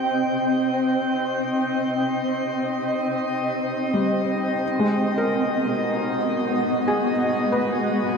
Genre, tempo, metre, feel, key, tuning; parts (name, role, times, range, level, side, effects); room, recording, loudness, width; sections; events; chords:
ambient; free time; A4 = 439 Hz
granular cloud pad; sustained chords; 0.0-8.2 s; Ab3 to G5; -22 LUFS; equal; built-in reverb
felt-muted upright piano; arpeggios; 0.0-8.2 s; G3 to Bb4; -27 LUFS; left 1 dB; diffuse ambient delay
wet shimmer reverb, RT60 8.4 s; cassette tape; -20 LUFS; side -5 dB against mid
0.0-8.2 A section
0.0 Cm; 4.6 Cb6